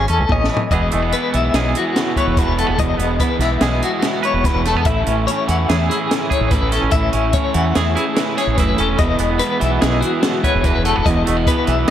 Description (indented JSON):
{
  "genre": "math rock and midwest emo",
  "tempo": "145 BPM",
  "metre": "5/4",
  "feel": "straight",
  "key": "E major",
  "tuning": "A4 = 439 Hz",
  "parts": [
    { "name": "twangy electric guitar", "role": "accompaniment", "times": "0.0-11.9 s", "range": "E2 to B4", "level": "-22 LUFS", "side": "right 7 dB", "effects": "tremolo, analog delay" },
    { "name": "clean electric guitar", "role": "arpeggios", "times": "0.0-11.9 s", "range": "F#4 to F#5", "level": "-21 LUFS", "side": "left 7 dB", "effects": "tremolo, analog delay" },
    { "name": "growling fingered electric bass", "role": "bass", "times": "0.0-11.9 s", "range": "E1 to E2", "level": "-20 LUFS", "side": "equal", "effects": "overdrive" },
    { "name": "compact cocktail drum kit", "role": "drums", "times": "0.1-11.9 s", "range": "hi-hat, kick drum, snare drum, toms", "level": "-20 LUFS", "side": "equal", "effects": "none" },
    { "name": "crunchy overdriven guitar", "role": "riff", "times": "0.7-11.9 s", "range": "A2 to E4", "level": "-22 LUFS", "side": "equal", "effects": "none" }
  ],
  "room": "light reverb",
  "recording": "echo-heavy mix",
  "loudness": "-15 LUFS",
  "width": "side -10 dB against mid",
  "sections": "0.7-11.9 A section",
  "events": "drum fill 0.3-0.7",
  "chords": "0.0 Amaj7; 0.7 Emaj9; 4.9 Amaj7; 9.0 Emaj9",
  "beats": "0.30 | 0.72 1.13 1.55 1.96 2.37 | 2.79 3.20 3.62 4.03 4.45 | 4.86 5.27 5.69 6.10 6.51 | 6.93 7.34 7.76 8.17 8.58 | 9.00 9.41 9.82 10.24 10.65 | 11.07 11.48 11.89"
}